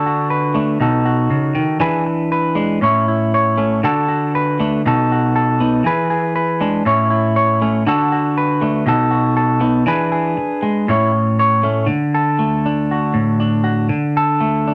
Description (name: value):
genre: highlife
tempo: 119 BPM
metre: 4/4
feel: straight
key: D major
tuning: A4 = 441 Hz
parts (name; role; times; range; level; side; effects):
- clean electric guitar; solo; 0.0-14.7 s; A2 to C#5; -17 LUFS; equal; none
room: wet studio reverb, RT60 0.5 s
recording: none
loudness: -17 LUFS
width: mono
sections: 0.0-11.9 A section; 11.9-14.7 B section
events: none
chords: 0.0 D; 0.8 B7; 1.8 E7; 2.8 A; 3.8 D; 4.8 B7; 5.8 E7; 6.8 A; 7.9 D; 8.9 B7; 9.9 E7; 10.9 A; 11.9 D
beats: 0.30 0.80 1.31 | 1.81 2.31 2.82 3.32 | 3.83 4.33 4.83 5.33 | 5.84 6.34 6.85 7.35 | 7.85 8.36 8.86 9.36 | 9.87 10.37 10.88 11.38 | 11.88 12.39 12.89 13.40 | 13.90 14.41